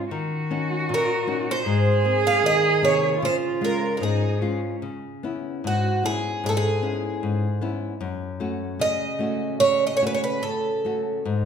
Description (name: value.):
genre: fado-style ballad.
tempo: 72-78 BPM.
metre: 2/4.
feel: rubato.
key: Db major, C# minor from 4.8 s.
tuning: A4 = 439 Hz.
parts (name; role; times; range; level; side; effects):
warm cello; second line; 0.0-4.8, 11.2-11.5 s; Db4 to Ab4; -24 LUFS; right 4 dB; none.
nylon-string guitar; accompaniment; 0.0-11.5 s; F#2 to Ab4; -25 LUFS; left 2 dB; none.
picked twelve-string acoustic guitar; melody; 0.9-11.0 s; F#4 to F5; -23 LUFS; right 2 dB; none.
room: wet recital hall reverb, RT60 1.4 s.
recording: minimal, uncompressed stereo recording.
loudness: -21 LUFS.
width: side -7 dB against mid.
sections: 0.0-4.8 A section; 4.8-11.5 B section.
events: none.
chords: 0.1 Ebm7; 1.7 Abadd9; 3.2 Db; 4.8 C#m7; 8.0 F#m.